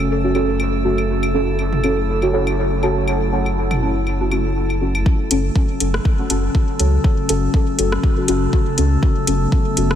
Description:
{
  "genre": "dub techno",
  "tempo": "121 BPM",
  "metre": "4/4",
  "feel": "swing 55% on 16ths",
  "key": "F# minor",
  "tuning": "A4 = 439 Hz",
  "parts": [
    { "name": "warbly tape-like pad", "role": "sustained chords", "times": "0.0-10.0 s", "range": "C#3 to E4", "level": "-24 LUFS", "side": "equal", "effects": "chorus, built-in reverb, sidechain pumping" },
    { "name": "soft dub sub bass", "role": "bass", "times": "0.0-10.0 s", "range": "F#1 to C#2", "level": "-21 LUFS", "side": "equal", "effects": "tube saturation, sidechain pumping" },
    { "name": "drifting glass-harmonics texture", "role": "texture", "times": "0.0-10.0 s", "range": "A4", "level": "-29 LUFS", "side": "left 1 dB", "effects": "chorus, built-in reverb, sidechain pumping" },
    { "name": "deep mellow chord stab", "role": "stabs", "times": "0.2-9.9 s", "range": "C#4 to A4", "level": "-21 LUFS", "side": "equal", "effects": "chorus, phaser, sidechain pumping, dub echo" },
    { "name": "electronic claves and toms", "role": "percussion", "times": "0.3-5.0 s", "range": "none", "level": "-29 LUFS", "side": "left 1 dB", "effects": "sidechain pumping on perc, studio reverb, sidechain pumping on toms, dub echo" },
    { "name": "electronic kick drum", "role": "drums", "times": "5.1-9.6 s", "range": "none", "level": "-16 LUFS", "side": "equal", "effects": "studio reverb" },
    { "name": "soft vintage rhythm box", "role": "drums", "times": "5.3-10.0 s", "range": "hi-hat, rim click", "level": "-25 LUFS", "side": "left 1 dB", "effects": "overdrive, studio reverb" }
  ],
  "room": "moderate huge ambient reverb, RT60 5.6 s",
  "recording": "dreamy mix soaked in reverb",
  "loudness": "-16 LUFS",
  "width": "side -10 dB against mid",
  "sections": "0.0-5.1 A section; 5.1-10.0 B section",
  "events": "none",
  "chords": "0.0 F#m",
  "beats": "0.10 0.60 | 1.09 1.59 2.08 2.58 | 3.08 3.57 4.07 4.56 | 5.06 5.56 6.05 6.55 | 7.04 7.54 8.04 8.53 | 9.03 9.52"
}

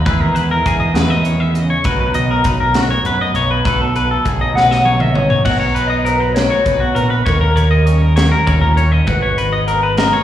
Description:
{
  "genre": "math rock and midwest emo",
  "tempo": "66 BPM (dotted quarters)",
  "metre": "6/8",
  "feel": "straight",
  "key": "B major",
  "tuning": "A4 = 439 Hz",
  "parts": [
    { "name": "twangy electric guitar", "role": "accompaniment", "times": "0.0-10.2 s", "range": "G#2 to A#4", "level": "-23 LUFS", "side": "right 9 dB", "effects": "ensemble chorus, slapback echo" },
    { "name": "twangy electric guitar", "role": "arpeggios", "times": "0.0-10.2 s", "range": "F#4 to F#5", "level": "-18 LUFS", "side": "left 4 dB", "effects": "warbly pitch drift, slapback echo" },
    { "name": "growling picked electric bass", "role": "bass", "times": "0.1-10.1 s", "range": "G#1 to F#2", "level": "-16 LUFS", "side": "equal", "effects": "overdrive" },
    { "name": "crisp fusion drum kit", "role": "drums", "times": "0.1-10.1 s", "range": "crash cymbal, hi-hat, kick drum, snare drum, toms", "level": "-20 LUFS", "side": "equal", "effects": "none" },
    { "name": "electric guitar through a small old amp", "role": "melody", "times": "4.6-10.2 s", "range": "A#4 to F#5", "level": "-19 LUFS", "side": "left 1 dB", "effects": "lush chorus, slapback echo, digital delay" }
  ],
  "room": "little or no reverb",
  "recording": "live gig heard through the venue's PA, recital hall reverb, studio reverb",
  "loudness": "-12 LUFS",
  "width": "side -11 dB against mid",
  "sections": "0.0-5.5 A section; 5.5-10.2 B section",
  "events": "drum fill 4.6-5.5",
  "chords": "0.1 Emaj7; 1.9 Bmaj7; 3.6 B7; 5.5 Bmaj7; 7.3 D#7; 9.1 G#m7",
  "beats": "| 0.05 0.95 | 1.85 2.75 | 3.65 4.55 | 5.45 6.36 | 7.26 8.17 | 9.07 9.98"
}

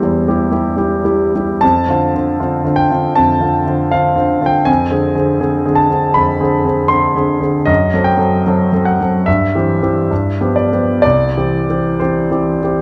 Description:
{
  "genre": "classical, romantic character piece for solo piano",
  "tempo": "60-81 BPM",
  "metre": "4/4",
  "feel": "rubato",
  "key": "unclear",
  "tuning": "A4 = 440 Hz",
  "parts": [
    { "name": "clear grand piano", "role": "solo", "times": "0.0-12.8 s", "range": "C2 to C6", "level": "-14 LUFS", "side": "equal", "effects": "none" }
  ],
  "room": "wet recital hall reverb, RT60 1.5 s",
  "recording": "none",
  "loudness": "-14 LUFS",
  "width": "mono",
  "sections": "0.0-12.8 A section",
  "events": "none",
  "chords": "0.0 C/E; 1.6 Dm7/F; 4.7 Dm7b5/F; 7.7 F#dim; 9.3 C/G; 10.1 G7; 11.0 C",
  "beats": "0.00 0.76 | 1.62 2.40 3.17 3.93 | 4.68 5.42 6.17 6.92 | 7.69 8.47 9.27 10.10 | 11.04 12.00"
}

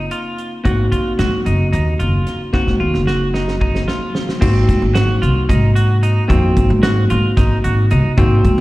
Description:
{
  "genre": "progressive instrumental, band music in an uneven meter",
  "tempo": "223 BPM (eighths)",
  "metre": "7/8",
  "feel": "straight",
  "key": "Ab mixolydian",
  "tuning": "A4 = 441 Hz",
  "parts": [
    { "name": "bell-like tine electric piano", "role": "accompaniment", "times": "0.0-8.6 s", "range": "Bb3 to Gb4", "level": "-20 LUFS", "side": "left 1 dB", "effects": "none" },
    { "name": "clean electric guitar", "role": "arpeggios", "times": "0.0-8.6 s", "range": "C4 to Gb4", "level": "-24 LUFS", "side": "right 1 dB", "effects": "wide subtle chorus, slapback echo" },
    { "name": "upright bass", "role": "bass", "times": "0.0-8.6 s", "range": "Gb1 to Ab2", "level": "-15 LUFS", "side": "equal", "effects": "none" },
    { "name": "natural country drum kit", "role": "drums", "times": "0.1-8.6 s", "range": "crash cymbal, hi-hat, kick drum, snare drum", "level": "-19 LUFS", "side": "equal", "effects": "none" }
  ],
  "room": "studio ambience",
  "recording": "live gig heard through the venue's PA, recital hall reverb",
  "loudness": "-13 LUFS",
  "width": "side -18 dB against mid",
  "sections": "0.0-4.4 A section; 4.4-8.6 B section",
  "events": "drum fill 2.5-4.4",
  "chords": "0.0 Ab7 (rootless); 4.4 Ab7",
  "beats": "0.11 0.38 | 0.65 0.92 1.19 1.46 1.73 2.00 2.27 | 2.53 2.80 3.07 3.34 3.61 3.88 4.15 | 4.42 4.69 4.96 5.22 5.49 5.76 6.03 | 6.30 6.57 6.84 7.11 7.37 7.64 7.91 | 8.18 8.45"
}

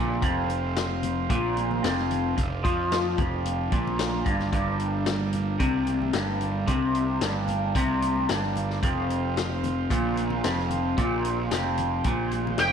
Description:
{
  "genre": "psychedelic rock",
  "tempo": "112 BPM",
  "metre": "4/4",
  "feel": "straight",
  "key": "unclear",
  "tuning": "A4 = 441 Hz",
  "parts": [
    { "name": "combo organ", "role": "sustained chords", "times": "0.0-12.7 s", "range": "F3 to G4", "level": "-34 LUFS", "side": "right 9 dB", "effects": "none" },
    { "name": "electric guitar through a small old amp", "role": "riff", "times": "0.0-12.7 s", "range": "F2 to F3", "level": "-26 LUFS", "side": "left 1 dB", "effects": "phaser" },
    { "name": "fuzz picked electric bass", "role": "bass", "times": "0.0-12.7 s", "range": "F1 to F2", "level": "-30 LUFS", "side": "right 1 dB", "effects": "overdrive" },
    { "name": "vintage drum kit", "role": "drums", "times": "0.2-12.7 s", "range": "hi-hat, kick drum, snare drum", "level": "-30 LUFS", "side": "left 2 dB", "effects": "none" },
    { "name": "congas", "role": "percussion", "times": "1.0-12.6 s", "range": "none", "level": "-40 LUFS", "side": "left 7 dB", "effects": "none" },
    { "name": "octave-fuzz lead guitar", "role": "melody", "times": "12.6-12.7 s", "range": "G5", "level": "-20 LUFS", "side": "right 1 dB", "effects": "wah, distortion" }
  ],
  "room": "light reverb, small room ambience",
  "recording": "1960s-style stereo with parts hard left and right",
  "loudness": "-23 LUFS",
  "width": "side -7 dB against mid",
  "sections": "0.0-12.7 A section",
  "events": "drum fill 4.1-4.5",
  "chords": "0.2 F5; 4.5 Gm; 8.8 F5",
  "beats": "| 0.22 0.76 1.30 1.84 | 2.38 2.92 3.45 3.99 | 4.53 5.07 5.61 6.14 | 6.68 7.22 7.75 8.29 | 8.83 9.37 9.90 10.44 | 10.98 11.51 12.05 12.59"
}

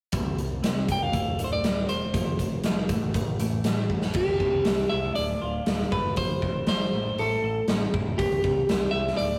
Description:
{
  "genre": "quiet-loud alternative rock",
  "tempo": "119 BPM",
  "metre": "4/4",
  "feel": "straight",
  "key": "unclear",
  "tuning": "A4 = 444 Hz",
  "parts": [
    { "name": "twelve-string electric guitar", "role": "arpeggios", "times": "0.1-9.4 s", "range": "D2 to A4", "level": "-36 LUFS", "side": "equal", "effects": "none" },
    { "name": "growling picked electric bass", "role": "bass", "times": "0.1-9.4 s", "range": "D1 to C2", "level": "-35 LUFS", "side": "equal", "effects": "overdrive" },
    { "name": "big rock drum kit", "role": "drums", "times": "0.1-9.3 s", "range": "crash cymbal, hi-hat, kick drum, snare drum", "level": "-29 LUFS", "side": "equal", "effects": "none" },
    { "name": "electric guitar at the edge of break-up", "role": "melody", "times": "0.9-9.4 s", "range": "G4 to G5", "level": "-29 LUFS", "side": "equal", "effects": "spring reverb" }
  ],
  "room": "light reverb",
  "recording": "rough rehearsal-room recording",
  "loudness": "-26 LUFS",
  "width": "mono",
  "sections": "0.1-4.2 A section; 4.2-9.4 B section",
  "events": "drum fill 3.9",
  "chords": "0.1 C5; 1.1 D5; 2.1 F5; 2.9 A5; 4.2 C; 5.2 Dm; 6.2 F5; 6.9 Am; 8.2 C",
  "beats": "| 0.13 0.64 1.14 1.64 | 2.15 2.65 3.15 3.66 | 4.16 4.67 5.17 5.68 | 6.18 6.68 7.18 7.69 | 8.19 8.69 9.19"
}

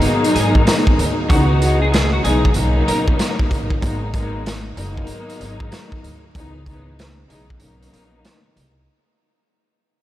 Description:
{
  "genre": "hip hop, boom-bap hip-hop",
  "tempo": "95 BPM",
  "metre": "4/4",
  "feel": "swing 63% on 16ths",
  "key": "G# minor",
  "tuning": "A4 = 442 Hz",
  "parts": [
    { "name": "warm studio string section", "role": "accompaniment", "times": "0.0-8.8 s", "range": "B2 to D#4", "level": "-21 LUFS", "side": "left 1 dB", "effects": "high-pass filter, low-pass filter" },
    { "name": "raw garage drum kit", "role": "drums", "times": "0.0-8.7 s", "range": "hi-hat, kick drum, snare drum", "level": "-19 LUFS", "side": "equal", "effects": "none" },
    { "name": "clean electric guitar", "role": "melody", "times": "0.3-3.1 s", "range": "F#4 to A#4", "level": "-24 LUFS", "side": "equal", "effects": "ensemble chorus, high-pass filter, low-pass filter, ping-pong delay" },
    { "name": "upright bass", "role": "bass", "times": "0.4-8.8 s", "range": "F#1 to D2", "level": "-21 LUFS", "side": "equal", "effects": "none" }
  ],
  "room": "light reverb, small room ambience",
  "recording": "vinyl crackle",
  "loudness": "-14 LUFS",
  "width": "side -14 dB against mid",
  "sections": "0.0-8.9 A section",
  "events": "fade-out 0.0-8.9; break 7.6-8.9",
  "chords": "0.0 G#m7; 1.3 C#m7; 2.6 Bmaj7; 3.8 G#m7; 6.3 C#m7; 7.6 Bmaj7",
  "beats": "0.03 0.67 | 1.30 1.93 2.56 3.19 | 3.82 4.46 5.09 5.72 | 6.35 6.98 7.61 8.24"
}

